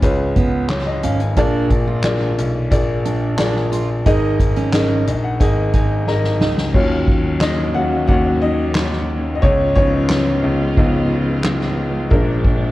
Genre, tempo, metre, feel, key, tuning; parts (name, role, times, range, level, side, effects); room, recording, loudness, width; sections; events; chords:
piano-driven pop; 89 BPM; 4/4; straight; Eb minor; A4 = 439 Hz
clear upright piano; accompaniment; 0.0-12.7 s; Ab2 to Bb5; -20 LUFS; left 1 dB
clear concert grand piano; bass; 0.0-12.7 s; Ab1 to Eb2; -20 LUFS; equal; transformer saturation
soft-mallet drum kit; drums; 0.0-12.6 s; crash cymbal, handclaps, hi-hat, kick drum, ride cymbal, snare drum; -19 LUFS; equal
fingerpicked steel-string acoustic guitar; riff; 0.4-6.6 s; Cb4 to F4; -23 LUFS; right 5 dB
warm studio string section; sustained chords; 6.7-12.7 s; Db3 to F4; -25 LUFS; right 1 dB
light reverb, small room ambience; worn, warbling old tape, cassette tape, warbly pitch drift; -15 LUFS; side -16 dB against mid
0.0-6.7 A section; 6.7-12.7 B section
upright piano fill 4.7-6.7; drum fill 6.1-6.7; upright piano solo 6.7-12.7
0.0 Db7; 1.4 Bb7; 4.1 Absus2; 6.7 Ebm7; 9.4 Db7; 12.1 Bb7